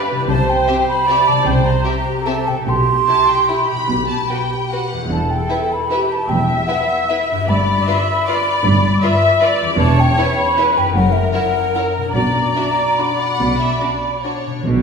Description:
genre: classical.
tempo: 137-167 BPM.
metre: 3/4.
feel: rubato.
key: E minor, B minor from 9.8 s.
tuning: A4 = 438 Hz.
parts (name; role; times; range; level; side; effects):
mellow hollow concert flute; second line; 0.0-14.2 s; E5 to C6; -18 LUFS; right 1 dB; none.
clear symphonic viola section; accompaniment; 0.0-14.4 s; G4 to E5; -20 LUFS; left 1 dB; none.
concert harp; arpeggios; 0.0-14.8 s; E2 to B4; -25 LUFS; left 4 dB; none.
rich symphonic cello section; bass; 0.3-14.8 s; E2 to C3; -22 LUFS; right 1 dB; none.
rich symphonic double bass section; bass; 0.3-14.8 s; E1 to C2; -22 LUFS; right 1 dB; none.
warm symphonic violin section; melody; 0.7-14.6 s; C#5 to B5; -29 LUFS; left 3 dB; none.
rich symphonic violin section; second line; 0.7-14.3 s; C4 to B4; -26 LUFS; equal; none.
timpani; percussion; 14.6-14.8 s; B2; -20 LUFS; right 1 dB; none.
room: wet recital hall reverb, RT60 1.7 s.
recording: recorded in a church or concert hall.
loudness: -14 LUFS.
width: side -5 dB against mid.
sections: 0.0-14.6 A section.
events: none.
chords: 0.3 C; 2.7 Em/B; 5.1 Em; 7.5 G7; 9.8 C#m7b5/E; 10.9 F#7; 12.2 Bm.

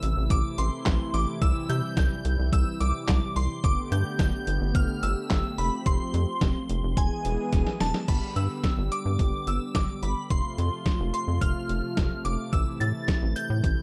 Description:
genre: synth-pop.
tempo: 108 BPM.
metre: 4/4.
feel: straight.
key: unclear.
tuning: A4 = 439 Hz.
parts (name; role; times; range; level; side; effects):
shimmering bell with halo; melody; 0.0-13.8 s; G#5 to A6; -35 LUFS; equal; ensemble chorus, delay.
brassy analog pad; sustained chords; 0.0-13.8 s; C3 to G#4; -35 LUFS; equal; chorus.
rubbery square bass; bass; 0.0-13.8 s; E1 to C3; -29 LUFS; equal; none.
detuned 8-bit digital drum machine; drums; 0.0-13.8 s; crash cymbal, handclaps, hi-hat, kick drum, snare drum; -28 LUFS; equal; none.
room: little or no reverb.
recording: dark, warm production.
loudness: -27 LUFS.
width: mono.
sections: 0.0-8.1 A section; 8.1-13.8 B section.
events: drum fill 7.5-8.1.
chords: 0.0 Am; 1.4 C; 3.6 Gadd9; 5.6 Fadd9; 7.0 E; 8.1 G; 10.3 F; 12.5 Am.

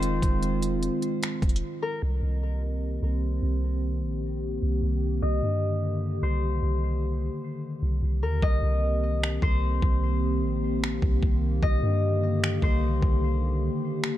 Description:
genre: hip hop, atmospheric cloud-rap.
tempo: 150 BPM.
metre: 4/4.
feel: half-time.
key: C minor.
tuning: A4 = 436 Hz.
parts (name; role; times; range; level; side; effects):
concert harp; melody; 0.0-14.2 s; Bb4 to Eb5; -34 LUFS; left 2 dB; low-pass filter, ping-pong delay.
dark analog pad; sustained chords; 0.0-14.2 s; D3 to G4; -30 LUFS; left 1 dB; chorus, sidechain pumping, low-pass filter.
soft 808-style bass; bass; 0.0-13.7 s; F1 to G2; -26 LUFS; equal; none.
smooth R&B drum kit; drums; 0.0-1.6, 8.4-14.1 s; finger snaps, hi-hat, kick drum; -26 LUFS; equal; none.
room: little or no reverb.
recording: dark, warm production.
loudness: -24 LUFS.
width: side -13 dB against mid.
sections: 0.0-2.0 A section; 2.0-8.4 B section; 8.4-14.2 C section.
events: break 1.6-2.0; filter sweep 2.0-8.4; hi-hats muted 8.4-14.2.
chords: 0.0 Fm7; 2.0 Cm7.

